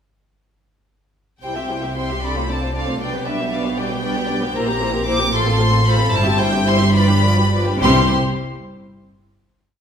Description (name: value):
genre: quick classical-period movement for string orchestra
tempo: 68-78 BPM (dotted quarters)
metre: 6/8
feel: rubato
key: C major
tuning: A4 = 440 Hz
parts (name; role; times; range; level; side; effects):
- warm chamber violin section; melody; 1.4-8.1 s; E5 to D6; -22 LUFS; left 2 dB; none
- warm symphonic violin section; second line; 1.4-8.1 s; E4 to G5; -24 LUFS; left 3 dB; none
- dark symphonic viola section; accompaniment; 1.4-8.1 s; F3 to A4; -25 LUFS; equal; none
- dark symphonic double bass section; bass; 1.4-8.1 s; G1 to C2; -22 LUFS; right 2 dB; none
- rich symphonic cello section; bass; 1.4-8.1 s; G2 to C3; -21 LUFS; right 1 dB; none
room: wet recital hall reverb, RT60 1.4 s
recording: recorded in a church or concert hall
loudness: -16 LUFS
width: side -8 dB against mid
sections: 1.4-7.8 A section; 7.8-9.5 final chord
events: slowing down 3.8-7.8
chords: 1.4 C; 2.2 Dm7/C; 3.0 G/B; 4.6 C7/Bb; 5.3 F/A; 6.1 C/G; 6.9 G7; 7.8 C